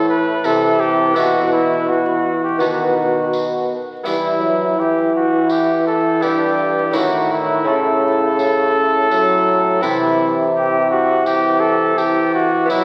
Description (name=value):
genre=classical, renaissance-style consort dance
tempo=83 BPM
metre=4/4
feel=straight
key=unclear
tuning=A4 = 438 Hz
part: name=warm cornet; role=melody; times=0.0-12.8 s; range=E4 to B4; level=-20 LUFS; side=equal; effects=none
part: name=lute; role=accompaniment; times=0.0-12.8 s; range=G2 to F#4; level=-27 LUFS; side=equal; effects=none
part: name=warm trombone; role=accompaniment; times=0.0-12.8 s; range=C#3 to G3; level=-23 LUFS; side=equal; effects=none
part: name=mellow bassoon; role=bass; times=0.0-12.8 s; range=G2 to E3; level=-22 LUFS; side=equal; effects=none
part: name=tambourine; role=percussion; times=0.4-12.8 s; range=none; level=-40 LUFS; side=equal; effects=none
room=wet church reverb, RT60 2.9 s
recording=very old 78 rpm record, vinyl crackle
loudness=-17 LUFS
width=mono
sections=0.0-12.8 A section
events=none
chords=0.0 Am; 1.2 Bsus4; 2.6 B; 4.1 Em; 6.9 A; 9.8 C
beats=0.45 | 1.17 1.89 2.61 3.33 | 4.06 4.79 5.50 6.22 | 6.94 7.67 8.39 9.11 | 9.83 10.54 11.26 11.98 | 12.70